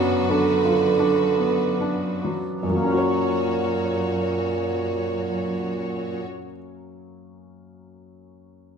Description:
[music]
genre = classical, romantic movement for piano and orchestra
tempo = 44-62 BPM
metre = 3/4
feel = rubato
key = F# major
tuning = A4 = 439 Hz
[part]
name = clear concert grand piano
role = melody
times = 0.0-8.8 s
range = F#2 to C#5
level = -26 LUFS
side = left 2 dB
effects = none
[part]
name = rich studio violin section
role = second line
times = 0.0-6.2 s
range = F#4 to C#5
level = -30 LUFS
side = left 2 dB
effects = none
[part]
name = mellow bassoon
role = accompaniment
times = 0.0-6.2 s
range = A#2 to F#3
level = -24 LUFS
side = right 6 dB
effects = none
[part]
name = rich studio cello section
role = bass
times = 0.0-6.2 s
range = F#2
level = -30 LUFS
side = right 2 dB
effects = none
[sound]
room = moderate scoring stage reverb, RT60 1.5 s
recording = minimal, uncompressed stereo recording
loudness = -20 LUFS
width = side -6 dB against mid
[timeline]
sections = 0.0-2.6 A section; 2.6-8.8 B section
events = slowing down 0.0-2.6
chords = 0.0 Bm/F#; 2.6 F#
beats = 0.30 1.38 | 2.63 3.75 4.86 | 5.96 7.06 8.18

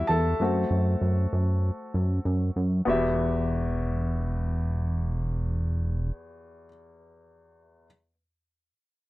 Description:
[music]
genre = pop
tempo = 97 BPM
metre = 4/4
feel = straight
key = E minor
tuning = A4 = 440 Hz
[part]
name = clear baby grand piano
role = accompaniment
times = 0.0-7.9 s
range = E2 to A5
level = -29 LUFS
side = left 1 dB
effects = none
[part]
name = chorused synth bass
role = bass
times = 0.0-6.1 s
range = E1 to F#2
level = -25 LUFS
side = equal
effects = none
[sound]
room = little or no reverb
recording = dry, close 1970s-style studio recording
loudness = -24 LUFS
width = side -18 dB against mid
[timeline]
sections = 0.0-2.9 A section; 2.9-5.4 B section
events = grand piano solo 0.0-2.9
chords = 0.4 F#dim; 2.9 Emadd9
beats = | 0.40 1.02 1.64 2.25 | 2.88 3.50 4.12 4.73

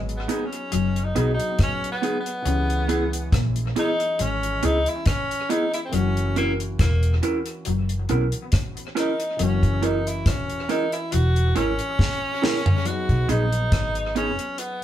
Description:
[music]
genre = lovers rock reggae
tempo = 69 BPM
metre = 4/4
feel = swing 54% on 16ths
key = B major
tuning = A4 = 442 Hz
[part]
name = dark baby grand piano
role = accompaniment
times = 0.0-14.8 s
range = E3 to G#4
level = -34 LUFS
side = left 1 dB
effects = dub echo
[part]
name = electric guitar at the edge of break-up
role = riff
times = 0.0-11.7 s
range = E3 to C#4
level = -31 LUFS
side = left 7 dB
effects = dub echo
[part]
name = vintage muted fingered electric bass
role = bass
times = 0.0-14.4 s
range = E1 to C#2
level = -24 LUFS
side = equal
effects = none
[part]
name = deep reggae drum kit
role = drums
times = 0.1-14.8 s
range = hi-hat, kick drum, rim click, snare drum, toms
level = -24 LUFS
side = equal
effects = dub echo
[part]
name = warm tenor saxophone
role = melody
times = 0.2-14.8 s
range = A#3 to F#4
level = -26 LUFS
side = equal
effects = none
[part]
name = electric guitar through a small old amp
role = stabs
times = 0.3-14.3 s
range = B3 to A#4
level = -25 LUFS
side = right 3 dB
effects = none
[sound]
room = moderate studio reverb, RT60 0.6 s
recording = band playing live in one room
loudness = -20 LUFS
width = side -12 dB against mid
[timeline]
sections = 0.0-12.9 A section; 12.9-14.8 B section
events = tenor saxophone solo 0.0-12.9; drum fill 12.0-12.9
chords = 0.0 B6; 2.5 C#m7; 5.9 F#7; 12.9 B6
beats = 0.72 1.59 | 2.46 3.33 4.19 5.06 | 5.93 6.79 7.66 8.53 | 9.39 10.26 11.13 11.99 | 12.86 13.73 14.59

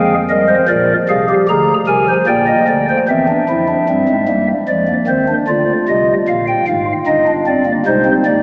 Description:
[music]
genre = classical, baroque-style 4-part fugue for pipe organ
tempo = 75 BPM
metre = 3/4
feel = straight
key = unclear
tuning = A4 = 440 Hz
[part]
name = pipe organ, stopped flute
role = solo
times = 0.0-8.4 s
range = G1 to Bb5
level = -14 LUFS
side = equal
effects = none
[sound]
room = wet cathedral reverb, RT60 5.0 s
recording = small speaker sound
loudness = -14 LUFS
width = mono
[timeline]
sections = 0.0-3.1 A section; 3.1-8.4 B section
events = none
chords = 0.0 Fm7; 0.7 Bb7; 2.3 Eb/Bb; 3.1 C7/E; 4.7 Fm; 5.5 Bb7; 7.1 Eb/G; 7.9 Ab/C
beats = | 0.69 1.49 2.29 | 3.09 3.89 4.69 | 5.49 6.28 7.08 | 7.87

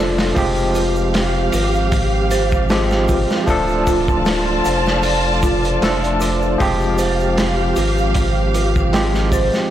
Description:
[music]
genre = trip hop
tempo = 77 BPM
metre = 4/4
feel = swing 54% on 16ths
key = unclear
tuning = A4 = 440 Hz
[part]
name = barky tine electric piano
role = accompaniment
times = 0.0-9.7 s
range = F3 to A4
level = -20 LUFS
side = equal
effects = medium stereo tremolo, vintage 12-bit sampler grit, tape echo
[part]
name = dark studio string section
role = sustained chords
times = 0.0-9.7 s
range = F4 to A5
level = -22 LUFS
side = right 1 dB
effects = none
[part]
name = dark detuned synth bell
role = arpeggios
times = 0.0-9.7 s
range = F4 to C5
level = -24 LUFS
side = right 2 dB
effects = chorus, phaser, ping-pong delay
[part]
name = round analog bass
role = bass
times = 0.0-9.5 s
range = D1 to Ab1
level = -21 LUFS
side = equal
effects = none
[part]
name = crunchy breakbeat drum kit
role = drums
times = 0.2-9.7 s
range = hi-hat, kick drum, snare drum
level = -22 LUFS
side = equal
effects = none
[part]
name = tube shaker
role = percussion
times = 0.2-9.7 s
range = none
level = -38 LUFS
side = equal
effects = none
[sound]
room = light reverb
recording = blown-out, overdriven recording, overdrive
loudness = -14 LUFS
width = side -11 dB against mid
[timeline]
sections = 0.4-9.7 A section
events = none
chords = 0.4 Fmadd9; 3.5 Dm; 6.6 Fmadd9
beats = | 0.36 1.14 1.92 2.70 | 3.48 4.26 5.04 5.82 | 6.60 7.38 8.15 8.93

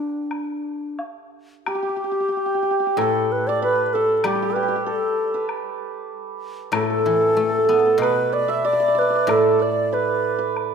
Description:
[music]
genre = chinese traditional, Chinese chamber ensemble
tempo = 95 BPM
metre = 4/4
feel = uneven beats, rubato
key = D zhi mode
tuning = A4 = 440 Hz
[part]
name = bright low xiao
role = melody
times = 0.0-10.6 s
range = D4 to E5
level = -21 LUFS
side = left 1 dB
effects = none
[part]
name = hammered dulcimer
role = second line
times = 0.0-10.7 s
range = D4 to E5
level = -24 LUFS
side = right 7 dB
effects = none
[part]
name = woodblock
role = percussion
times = 0.3-10.7 s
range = none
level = -31 LUFS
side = left 4 dB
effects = none
[part]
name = guzheng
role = accompaniment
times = 3.0-10.7 s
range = A2 to B3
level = -25 LUFS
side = equal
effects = none
[sound]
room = moderate scoring stage reverb, RT60 1.7 s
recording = minimal, uncompressed stereo recording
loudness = -18 LUFS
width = side -6 dB against mid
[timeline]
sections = 0.0-1.7 A section; 1.7-10.7 B section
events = none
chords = none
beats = 0.32 0.99 | 1.67 2.34 2.99 3.63 | 4.26 4.88 5.49 6.11 | 6.74 7.37 8.01 8.65 | 9.29 9.92 10.56

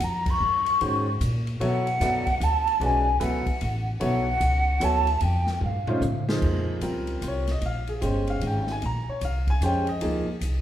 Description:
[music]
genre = modal jazz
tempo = 150 BPM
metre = 3/4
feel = swing 64% on 8ths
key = Bb dorian from 6.4 s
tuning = A4 = 440 Hz
[part]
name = breathy mellow jazz flute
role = melody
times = 0.0-6.2 s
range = F5 to Db6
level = -25 LUFS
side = equal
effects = none
[part]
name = upright bass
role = bass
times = 0.0-10.6 s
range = G1 to B2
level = -26 LUFS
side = equal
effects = none
[part]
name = swinging big-band drum kit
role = drums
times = 0.0-10.5 s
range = crash cymbal, hi-hat, kick drum, ride cymbal, snare drum, toms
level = -33 LUFS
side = equal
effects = none
[part]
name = clear baby grand piano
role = accompaniment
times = 0.8-10.6 s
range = Eb3 to Bb5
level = -29 LUFS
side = equal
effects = none
[sound]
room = wet large studio reverb, RT60 1.4 s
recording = band playing live in one room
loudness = -22 LUFS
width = side -11 dB against mid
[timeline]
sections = 0.0-6.4 A section; 6.4-10.6 B section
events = band accent 0.2; drum fill 5.6-6.4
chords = 0.0 Ebm9; 1.6 Bm9; 5.2 F7; 6.4 Bbm9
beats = 0.01 | 0.41 0.81 1.21 | 1.61 2.01 2.41 | 2.81 3.21 3.61 | 4.01 4.41 4.81 | 5.21 5.61 6.01 | 6.41 6.81 7.21 | 7.62 8.02 8.42 | 8.82 9.22 9.62 | 10.02 10.42

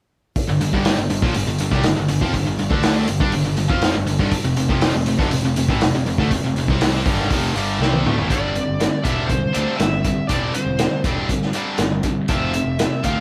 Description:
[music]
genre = classic rock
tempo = 121 BPM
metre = 4/4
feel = straight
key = unclear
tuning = A4 = 440 Hz
[part]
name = vintage drum kit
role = drums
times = 0.4-13.2 s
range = hi-hat, kick drum, snare drum, toms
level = -24 LUFS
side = equal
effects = none
[part]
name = distorted electric guitar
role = riff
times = 0.5-13.2 s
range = F2 to F4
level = -27 LUFS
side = equal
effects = overdrive
[part]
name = tight distorted guitar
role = riff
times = 0.5-13.2 s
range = F2 to F4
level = -26 LUFS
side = equal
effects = distortion
[part]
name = fuzz picked electric bass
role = bass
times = 0.5-13.2 s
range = E1 to G2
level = -26 LUFS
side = equal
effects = overdrive
[part]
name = smooth overdriven lead guitar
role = melody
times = 8.3-13.2 s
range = C5 to F5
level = -28 LUFS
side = equal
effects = none
[sound]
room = light reverb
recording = band playing live in one room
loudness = -20 LUFS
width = mono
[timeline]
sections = 0.4-8.3 A section; 8.3-13.2 B section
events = drum fill 7.8-8.3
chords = 0.4 G5; 4.4 F5; 8.3 Gsus4; 12.3 F5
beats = | 0.36 0.86 1.35 1.84 | 2.34 2.83 3.33 3.82 | 4.32 4.81 5.31 5.80 | 6.30 6.80 7.30 7.79 | 8.29 8.79 9.29 9.79 | 10.29 10.79 11.29 11.79 | 12.29 12.79

